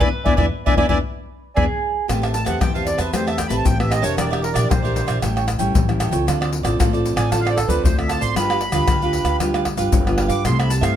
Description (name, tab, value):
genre	samba and choro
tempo	115 BPM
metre	4/4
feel	straight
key	A minor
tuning	A4 = 440 Hz
part	accordion	melody	0.0-11.0 s	G4 to D6	-24 LUFS	right 2 dB	light tremolo tuning
part	mandolin	second line	0.0-2.1 s	G#4 to B4	-27 LUFS	right 6 dB	none
part	cavaquinho	accompaniment	0.0-11.0 s	D4 to A5	-27 LUFS	right 8 dB	none
part	nylon-string guitar	accompaniment	0.0-11.0 s	A2 to B4	-24 LUFS	left 2 dB	none
part	upright bass	bass	0.0-10.9 s	E1 to G2	-22 LUFS	equal	none
part	surdo, tube shaker, pandeiro and tamborim	percussion	0.0-11.0 s	none	-22 LUFS	left 2 dB	none
room	light reverb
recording	close, detailed microphones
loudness	-17 LUFS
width	side -10 dB against mid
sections	0.0-2.1 A section; 2.1-11.0 B section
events	band accent 0.0-2.1; accordion solo 2.1-11.0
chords	0.0 E7; 2.1 Am9; 4.2 Em7b5; 5.2 A7; 6.3 Dm7; 8.4 G7; 10.5 C6